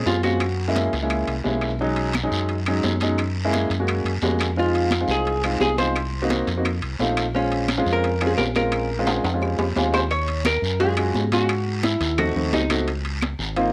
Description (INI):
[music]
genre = Afro-Cuban jazz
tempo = 173 BPM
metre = 4/4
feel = straight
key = Bb minor, Eb minor from 10.1 s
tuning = A4 = 442 Hz
[part]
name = warm concert grand piano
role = accompaniment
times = 0.0-13.7 s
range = F#3 to C5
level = -26 LUFS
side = equal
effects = cassette tape
[part]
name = fingered electric bass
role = bass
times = 0.0-13.7 s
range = Ab1 to Ab2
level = -28 LUFS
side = equal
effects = none
[part]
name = archtop guitar, miked and amplified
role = melody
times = 0.1-1.6, 4.6-12.8 s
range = Db4 to Db5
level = -27 LUFS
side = equal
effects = cassette tape
[part]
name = congas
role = percussion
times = 0.1-13.7 s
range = none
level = -32 LUFS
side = equal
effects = none
[part]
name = guiro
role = percussion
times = 0.1-13.7 s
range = none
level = -35 LUFS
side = equal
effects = none
[part]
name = timbales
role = percussion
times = 0.1-13.7 s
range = none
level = -32 LUFS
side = equal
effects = none
[part]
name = claves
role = percussion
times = 0.4-13.4 s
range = none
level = -36 LUFS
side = equal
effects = none
[sound]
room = moderate studio reverb, RT60 0.6 s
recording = home recording on cassette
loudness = -22 LUFS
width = mono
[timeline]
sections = 0.0-10.1 A section; 10.1-13.7 B section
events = drum fill 9.1-10.1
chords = 0.4 Gb9; 1.8 B6; 3.2 Gb9; 4.6 Fm7; 6.0 Cm7b5; 6.7 F7; 7.3 Bbm9; 10.1 Ebm11; 11.5 Ab7b9; 12.9 Dbmaj13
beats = 0.06 | 0.41 0.76 1.10 1.45 | 1.80 2.14 2.49 2.84 | 3.19 3.53 3.88 4.22 | 4.57 4.92 5.26 5.61 | 5.96 6.30 6.65 7.00 | 7.34 7.69 8.04 8.38 | 8.73 9.07 9.42 9.77 | 10.11 10.46 10.80 11.15 | 11.49 11.84 12.18 12.53 | 12.87 13.22 13.56